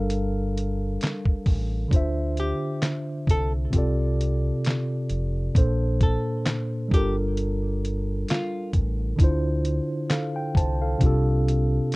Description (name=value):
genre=lo-fi hip hop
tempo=66 BPM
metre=4/4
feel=swing 55% on 16ths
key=unclear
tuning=A4 = 440 Hz
part: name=mellow tine electric piano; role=accompaniment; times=0.0-12.0 s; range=Bb2 to A5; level=-26 LUFS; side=equal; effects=medium stereo tremolo, cassette tape, low-pass filter
part: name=deep dub fingered electric bass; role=bass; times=0.0-11.8 s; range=F1 to D2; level=-26 LUFS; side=equal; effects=none
part: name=lo-fi sampler-style drum kit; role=drums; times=0.1-12.0 s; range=handclaps, hi-hat, kick drum, snare drum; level=-22 LUFS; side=equal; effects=none
part: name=archtop guitar, miked and amplified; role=melody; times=2.4-8.7 s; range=F4 to A4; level=-30 LUFS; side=left 1 dB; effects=low-pass filter
room=little or no reverb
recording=rough home demo mix, cassette tape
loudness=-22 LUFS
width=side -23 dB against mid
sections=0.0-12.0 A section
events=none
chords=0.0 Gm9; 1.9 Dm7; 3.7 F69/C; 5.5 Bbmaj7; 6.9 Gm9; 9.2 Dm7; 11.0 F69/C